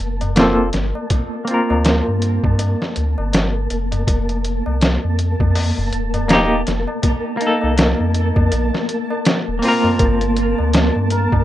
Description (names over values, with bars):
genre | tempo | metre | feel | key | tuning
trip hop | 81 BPM | 4/4 | swing 58% on 16ths | G minor | A4 = 440 Hz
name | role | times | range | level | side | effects
warm sub bass | bass | 0.0-11.4 s | Eb1 to G2 | -19 LUFS | equal | none
flickering grainy texture | texture | 0.0-11.4 s | Bb3 to A5 | -23 LUFS | equal | built-in reverb, plate reverb
trip hop sampler-style drum kit | drums | 0.2-11.4 s | hi-hat, kick drum, snare drum | -18 LUFS | equal | none
tabla | percussion | 0.2-11.4 s | none | -28 LUFS | left 1 dB | none
semi-hollow electric guitar | accompaniment | 0.4-11.4 s | Bb3 to Bb4 | -20 LUFS | equal | tremolo, vintage 12-bit sampler grit, low-pass filter, plate reverb, tape echo
santur | melody | 11.1-11.4 s | Bb4 | -22 LUFS | equal | none
room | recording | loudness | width
light reverb | rough home demo mix | -15 LUFS | side -13 dB against mid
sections
0.0-11.4 A section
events
filter sweep on clean electric guitar 0.0-11.4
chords
0.0 Gm11; 4.1 F7sus4; 10.0 Gm11